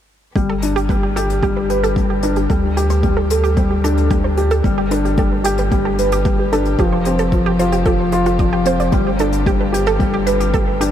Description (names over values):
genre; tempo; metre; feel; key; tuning
piano and strings electronica; 112 BPM; 4/4; straight; G major; A4 = 443 Hz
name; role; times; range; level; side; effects
clear string quartet; sustained chords; 0.4-10.9 s; D3 to G4; -36 LUFS; left 1 dB; sidechain pumping
analog pluck; arpeggios; 0.4-10.9 s; F4 to D5; -22 LUFS; right 4 dB; chorus, sidechain pumping, analog delay
felt-muted upright piano; riff; 0.4-10.9 s; F3 to B4; -17 LUFS; left 2 dB; analog delay
round analog bass; bass; 0.4-10.9 s; F1 to D2; -21 LUFS; equal; sidechain pumping
electronic kick drum; drums; 0.4-10.6 s; none; -19 LUFS; equal; none
hi-hat; drums; 0.4-10.9 s; none; -32 LUFS; left 8 dB; none
room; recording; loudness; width
moderate huge ambient reverb, RT60 7.8 s; dreamy mix soaked in reverb, faint mains hum; -14 LUFS; side -10 dB against mid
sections
0.4-10.9 A section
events
fade-in on string quartet 0.4-10.9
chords
0.4 G; 2.5 Dsus4; 4.6 G; 6.8 Fadd9; 8.9 G